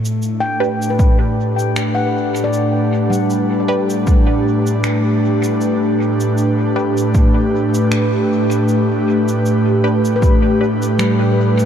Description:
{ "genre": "ambient dub", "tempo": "78 BPM", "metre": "4/4", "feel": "swing 56% on 16ths", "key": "unclear", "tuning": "A4 = 440 Hz", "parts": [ { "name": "airy breathy pad", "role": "sustained chords", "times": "0.0-11.7 s", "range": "A2 to B4", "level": "-15 LUFS", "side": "equal", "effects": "chorus" }, { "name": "electronic shaker and finger snaps", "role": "drums", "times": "0.1-11.7 s", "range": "none", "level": "-29 LUFS", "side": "equal", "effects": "dub echo" }, { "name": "handpan", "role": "arpeggios", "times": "0.4-5.2, 10.2-11.7 s", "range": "G3 to G5", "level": "-22 LUFS", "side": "left 3 dB", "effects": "ping-pong delay" }, { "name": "filtered dub chord stab", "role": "stabs", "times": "0.6-10.8 s", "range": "D4 to B4", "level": "-26 LUFS", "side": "right 2 dB", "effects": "none" }, { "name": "electronic kick drum", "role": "drums", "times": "1.0-10.4 s", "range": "none", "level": "-13 LUFS", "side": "equal", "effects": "overdrive" } ], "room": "moderate huge ambient reverb, RT60 7.7 s", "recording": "dreamy mix soaked in reverb", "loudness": "-13 LUFS", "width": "side -8 dB against mid", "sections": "0.0-11.7 A section", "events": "none", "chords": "0.0 G/A", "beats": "0.22 0.99 1.76 | 2.53 3.30 4.07 4.84 | 5.61 6.38 7.14 7.91 | 8.68 9.45 10.22 10.99" }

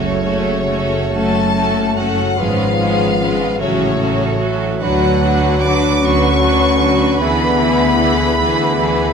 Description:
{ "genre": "classical, slow romantic movement for symphony orchestra", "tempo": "43-52 BPM (dotted quarters)", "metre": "6/8", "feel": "rubato", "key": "unclear", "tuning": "A4 = 440 Hz", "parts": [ { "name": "rich chamber violin section", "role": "melody", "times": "0.0-9.1 s", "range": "C#5 to D6", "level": "-21 LUFS", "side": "left 2 dB", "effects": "none" }, { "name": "dark clarinet", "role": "second line", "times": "0.0-9.1 s", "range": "F#4 to G#4", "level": "-25 LUFS", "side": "left 5 dB", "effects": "none" }, { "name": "mellow cor anglais", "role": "second line", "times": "0.0-9.1 s", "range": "B4 to C#5", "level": "-26 LUFS", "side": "right 6 dB", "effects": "none" }, { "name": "rich chamber violin section", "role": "second line", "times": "0.0-9.1 s", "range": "E#4 to B4", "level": "-25 LUFS", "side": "equal", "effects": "none" }, { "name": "small flute group", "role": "second line", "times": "0.0-9.1 s", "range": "C#5 to D6", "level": "-26 LUFS", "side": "right 1 dB", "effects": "none" }, { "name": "rich chamber viola section", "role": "accompaniment", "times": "0.0-9.1 s", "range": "E3 to E4", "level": "-23 LUFS", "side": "right 1 dB", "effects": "none" }, { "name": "warm bassoon", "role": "accompaniment", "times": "0.0-9.1 s", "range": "E3 to B3", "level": "-23 LUFS", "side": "right 2 dB", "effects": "none" }, { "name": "mellow French horn section", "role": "sustained chords", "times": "0.0-9.1 s", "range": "C#3 to D4", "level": "-20 LUFS", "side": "left 7 dB", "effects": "none" }, { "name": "clear chamber double bass section", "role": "bass", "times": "0.0-9.1 s", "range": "F#1 to D2", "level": "-21 LUFS", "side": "right 4 dB", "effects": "none" }, { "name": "rich studio cello section", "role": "bass", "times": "0.0-9.1 s", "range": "F#2 to D3", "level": "-23 LUFS", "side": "right 2 dB", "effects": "none" } ], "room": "moderate concert hall reverb, RT60 2.4 s", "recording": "close, detailed microphones", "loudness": "-13 LUFS", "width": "side -6 dB against mid", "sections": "0.0-9.1 A section", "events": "none", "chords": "0.0 F#m; 2.4 C#7/G#; 3.6 F#m/A; 4.8 Bm/D; 7.2 E7/D", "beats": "1.14 | 2.39 3.61 | 4.82 6.04 | 7.21 8.40" }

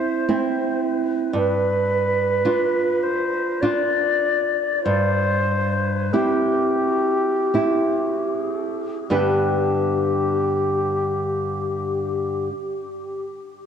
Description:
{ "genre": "romantic duo for flute and classical guitar", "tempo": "37-58 BPM", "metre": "3/4", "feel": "rubato", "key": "G major", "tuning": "A4 = 441 Hz", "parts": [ { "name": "silver concert flute", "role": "melody", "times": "0.0-12.5 s", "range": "G4 to D5", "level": "-22 LUFS", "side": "left 2 dB", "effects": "diffuse ambient delay" }, { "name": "nylon-string guitar", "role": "accompaniment", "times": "0.0-12.5 s", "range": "G2 to B4", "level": "-22 LUFS", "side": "right 2 dB", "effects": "none" } ], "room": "wet plate reverb, RT60 3.5 s", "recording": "dreamy mix soaked in reverb, cassette tape", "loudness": "-19 LUFS", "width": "side -8 dB against mid", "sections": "0.0-9.1 A section; 9.1-13.6 B section", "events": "slowing down 0.0-9.1", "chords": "0.0 C; 1.3 G7; 4.8 C/G; 9.1 G", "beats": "0.28 | 1.33 2.45 3.62 | 4.84 6.12 7.54 | 9.10 10.59 12.11" }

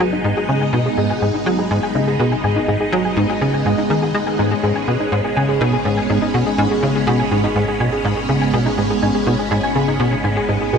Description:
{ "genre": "ambient, sequencer-driven space music", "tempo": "123 BPM", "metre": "4/4", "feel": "straight", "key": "G# minor", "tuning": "A4 = 440 Hz", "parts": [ { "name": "phased string machine", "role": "sustained chords", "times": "0.0-10.8 s", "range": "G#3 to D#4", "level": "-20 LUFS", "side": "equal", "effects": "ensemble chorus, phaser" }, { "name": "soft round pluck", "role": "arpeggios", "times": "0.0-10.8 s", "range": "D#4 to G#5", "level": "-23 LUFS", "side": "moving between left 4 dB and right 3 dB", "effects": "chorus, auto-pan, ping-pong delay" }, { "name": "tight sequencer bass", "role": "riff", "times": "0.0-10.8 s", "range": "G#2 to G#3", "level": "-18 LUFS", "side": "equal", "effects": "ensemble chorus, ping-pong delay" }, { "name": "analog drone", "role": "bass", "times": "0.0-10.8 s", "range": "G#1", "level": "-35 LUFS", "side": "equal", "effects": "chorus" } ], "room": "wet huge ambient reverb, RT60 8.6 s", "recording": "lossy compression artefacts", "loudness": "-15 LUFS", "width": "side -6 dB against mid", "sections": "0.0-10.8 A section", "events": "fade-in on synth drone 0.0-10.8", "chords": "0.0 G#m", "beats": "0.00 | 0.49 0.97 1.46 1.95 | 2.44 2.93 3.41 3.90 | 4.39 4.88 5.37 5.85 | 6.34 6.83 7.32 7.80 | 8.29 8.78 9.27 9.76 | 10.24 10.73" }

